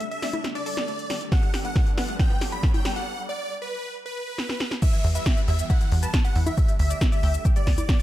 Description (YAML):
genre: uplifting trance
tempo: 137 BPM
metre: 4/4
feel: straight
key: G major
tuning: A4 = 437 Hz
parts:
  - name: supersaw chords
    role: melody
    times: 0.0-8.0 s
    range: B4 to B5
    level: -32 LUFS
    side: right 1 dB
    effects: sidechain pumping, ping-pong delay
  - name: analog string pad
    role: sustained chords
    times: 0.0-8.0 s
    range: D3 to A4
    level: -38 LUFS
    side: right 1 dB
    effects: ensemble chorus, sidechain pumping
  - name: analog pluck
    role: arpeggios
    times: 0.0-8.0 s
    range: E3 to D5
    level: -38 LUFS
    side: left 4 dB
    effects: lush chorus, sidechain pumping, ping-pong delay
  - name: punchy analog drum machine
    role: drums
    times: 0.0-8.0 s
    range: congas, crash cymbal, hi-hat, shaker, snare drum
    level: -30 LUFS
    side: equal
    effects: sidechain pumping on hats, sidechain pumping on perc, sidechain pumping on cymbals
  - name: riser and downlifter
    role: sound effects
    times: 0.0-8.0 s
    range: none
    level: -41 LUFS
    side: left 1 dB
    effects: none
  - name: electronic kick drum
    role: drums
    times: 1.3-8.0 s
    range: none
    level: -22 LUFS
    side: equal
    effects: none
  - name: plucky unison lead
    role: second line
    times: 4.8-8.0 s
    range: D5 to A5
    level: -37 LUFS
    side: equal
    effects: lush chorus, sidechain pumping, ping-pong delay
  - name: tight sequencer bass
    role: bass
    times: 5.0-7.8 s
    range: D2 to E2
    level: -22 LUFS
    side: equal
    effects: sidechain pumping
room: little or no reverb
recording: dark, warm production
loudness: -22 LUFS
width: side -14 dB against mid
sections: 0.0-4.8 A section; 4.8-8.0 B section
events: build-up 0.0-4.8; drum fill 0.0-3.1, 4.4-4.8; riser 0.0-3.1; filter sweep on synth pluck 0.0-4.8; break 3.1-4.8; drop 4.8-8.0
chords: 0.0 Dsus4; 1.3 Gadd9; 4.8 Em; 6.6 Dsus4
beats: 0.01 0.44 0.88 | 1.32 1.76 2.19 2.63 | 3.07 3.51 3.95 4.38 | 4.82 5.26 5.70 6.14 | 6.58 7.01 7.45 7.89